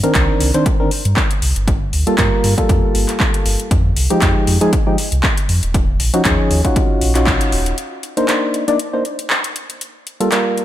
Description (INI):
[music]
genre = deep house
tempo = 118 BPM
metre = 4/4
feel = swing 55% on 16ths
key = C minor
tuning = A4 = 441 Hz
[part]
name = percussive organ stab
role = stabs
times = 0.0-10.6 s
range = Eb3 to D5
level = -17 LUFS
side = equal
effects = chorus, sidechain pumping, digital delay
[part]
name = deep house drum kit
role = drums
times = 0.0-10.6 s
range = handclaps, hi-hat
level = -20 LUFS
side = left 1 dB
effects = overdrive, studio reverb
[part]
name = sub bass with octave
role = bass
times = 0.2-7.7 s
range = Eb1 to G2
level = -18 LUFS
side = equal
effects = sidechain pumping
[part]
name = electronic kick drum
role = drums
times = 0.2-7.4 s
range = none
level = -18 LUFS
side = equal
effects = overdrive, studio reverb
[sound]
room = light reverb, digital ambience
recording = none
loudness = -14 LUFS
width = side -12 dB against mid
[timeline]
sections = 0.0-7.8 A section; 7.8-10.6 B section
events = band accent 7.3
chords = 0.0 Cm9; 1.7 Gm9; 3.7 Fm9; 5.7 Ebm9; 7.8 Cm9; 9.8 Gm9